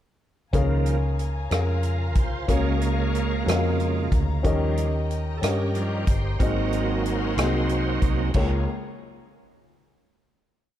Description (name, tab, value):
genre	slow gospel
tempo	61 BPM (dotted quarters)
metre	6/8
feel	straight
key	Db major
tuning	A4 = 440 Hz
part	warm upright piano	accompaniment	0.5-8.7 s	Db2 to F5	-28 LUFS	left 2 dB	none
part	bright tonewheel organ	sustained chords	0.5-8.7 s	Db3 to F5	-29 LUFS	right 5 dB	slow rotary speaker, chorus vibrato
part	rich studio string section	sustained chords	0.5-8.7 s	F4 to C6	-37 LUFS	left 4 dB	none
part	vintage muted fingered electric bass	bass	0.5-8.7 s	G1 to G2	-26 LUFS	equal	none
part	natural country drum kit	drums	0.5-8.5 s	crash cymbal, hi-hat, kick drum, rim click	-25 LUFS	equal	none
room	light reverb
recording	dark, warm production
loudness	-21 LUFS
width	side -12 dB against mid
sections	0.5-8.4 verse; 8.4-10.3 final chord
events	tonewheel organ solo 0.5-8.4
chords	0.5 Db6; 2.5 Gbmaj7/Db; 4.4 Eb7; 6.4 Ab7; 8.4 Db6